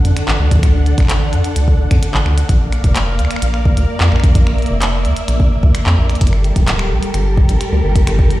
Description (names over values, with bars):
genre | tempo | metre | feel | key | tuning
IDM | 129 BPM | 4/4 | straight | unclear | A4 = 439 Hz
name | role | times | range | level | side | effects
soft string machine | sustained chords | 0.0-8.4 s | D3 to F#5 | -21 LUFS | equal | ensemble chorus
rubbery square bass | bass | 0.0-8.4 s | D1 to F#2 | -15 LUFS | equal | none
glitchy drum kit | drums | 0.1-8.4 s | finger snaps, handclaps, hi-hat | -22 LUFS | equal | small room reverb
electronic kick drum | drums | 0.5-8.3 s | none | -13 LUFS | equal | small room reverb
room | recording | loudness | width
little or no reverb | played on a big sound system in a bare room, stone room reverb | -12 LUFS | side -16 dB against mid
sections
0.0-8.4 A section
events
none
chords
0.0 D; 2.5 Bb; 6.2 Gmadd9